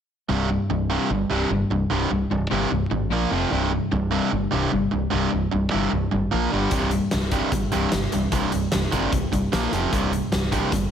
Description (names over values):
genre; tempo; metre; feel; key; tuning
hard rock; 150 BPM; 4/4; straight; unclear; A4 = 441 Hz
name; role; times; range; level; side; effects
crunchy overdriven guitar; riff; 0.3-10.9 s; C2 to Bb3; -26 LUFS; left 11 dB; none
distorted electric guitar; riff; 0.3-10.9 s; C2 to Bb3; -24 LUFS; right 7 dB; overdrive
modern bright fingered electric bass; bass; 0.3-10.9 s; C1 to Bb1; -27 LUFS; left 1 dB; none
huge arena drum kit; drums; 6.7-10.8 s; hi-hat, kick drum, snare drum; -26 LUFS; left 1 dB; none
room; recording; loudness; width
little or no reverb; heavily compressed radio sound, multiband compression; -20 LUFS; side -8 dB against mid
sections
0.3-10.9 A section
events
none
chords
0.3 C5; 3.1 Bb5; 3.3 F5; 3.5 C5; 6.3 Bb5; 6.5 G5; 6.7 C5; 9.5 Bb5; 9.7 F5; 9.9 C5